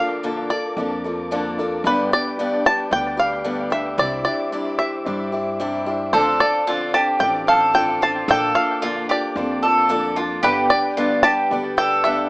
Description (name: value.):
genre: folk.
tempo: 112 BPM.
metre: 4/4.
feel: straight.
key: unclear.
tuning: A4 = 441 Hz.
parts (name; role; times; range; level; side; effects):
bluegrass banjo; melody; 0.0-12.3 s; B4 to A5; -20 LUFS; equal; analog delay.
picked acoustic archtop guitar; accompaniment; 0.0-12.3 s; G2 to A4; -24 LUFS; left 1 dB; none.
warm upright piano; accompaniment; 0.0-12.3 s; G1 to F5; -31 LUFS; equal; none.
mellow tonewheel organ; sustained chords; 0.0-12.3 s; Bb3 to D6; -31 LUFS; equal; slow rotary speaker.
upright bass; bass; 0.8-12.3 s; G1 to G2; -31 LUFS; equal; none.
mandolin; arpeggios; 6.1-12.3 s; F4 to A4; -19 LUFS; right 1 dB; none.
room: light reverb.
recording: rough home demo mix, small speaker sound.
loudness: -17 LUFS.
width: side -24 dB against mid.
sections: 0.0-12.3 A section.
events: none.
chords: 0.0 Bbmaj7; 1.9 G; 4.0 Cadd9; 6.1 Dm7; 8.3 Bbmaj7; 10.4 G.